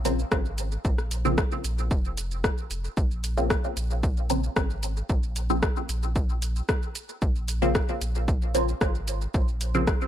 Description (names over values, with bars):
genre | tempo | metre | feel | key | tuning
dub techno | 113 BPM | 4/4 | straight | Bb minor | A4 = 440 Hz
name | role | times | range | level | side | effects
pure sine sub bass | bass | 0.0-9.9 s | F1 to Bb1 | -28 LUFS | equal | sidechain pumping
filtered dub chord stab | stabs | 0.1-9.9 s | Db3 to C4 | -29 LUFS | equal | phaser, sidechain pumping, dub echo
punchy analog drum machine | drums | 0.1-10.1 s | hi-hat, rim click, shaker | -31 LUFS | left 1 dB | overdrive, dub echo
electronic kick drum | drums | 0.3-10.0 s | none | -26 LUFS | equal | overdrive
room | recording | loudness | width
little or no reverb | echo-heavy mix | -24 LUFS | side -10 dB against mid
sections
0.0-3.0 A section; 3.0-10.1 A section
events
filter sweep on synth stab 0.0-3.0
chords
0.0 Bbmadd9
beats
0.32 | 0.85 1.38 1.91 2.44 | 2.97 3.50 4.03 4.57 | 5.10 5.63 6.16 6.69 | 7.22 7.75 8.28 8.81 | 9.34 9.87